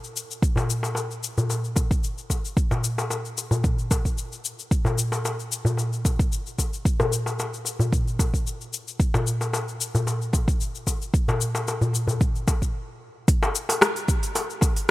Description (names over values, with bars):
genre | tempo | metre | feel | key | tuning
downtempo | 112 BPM | 4/4 | swing 54% on 16ths | none | none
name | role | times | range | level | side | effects
afro-pop drum kit | drums | 0.0-14.9 s | cabasa, hi-hat, rim click | -25 LUFS | left 3 dB | none
electronic kick drum | drums | 0.4-14.7 s | none | -22 LUFS | equal | none
darbuka | percussion | 0.6-14.7 s | none | -26 LUFS | left 1 dB | none
room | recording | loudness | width
digital ambience | none | -22 LUFS | side -17 dB against mid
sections
0.0-13.3 A section; 13.3-14.9 B section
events
stop 12.7-13.3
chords
none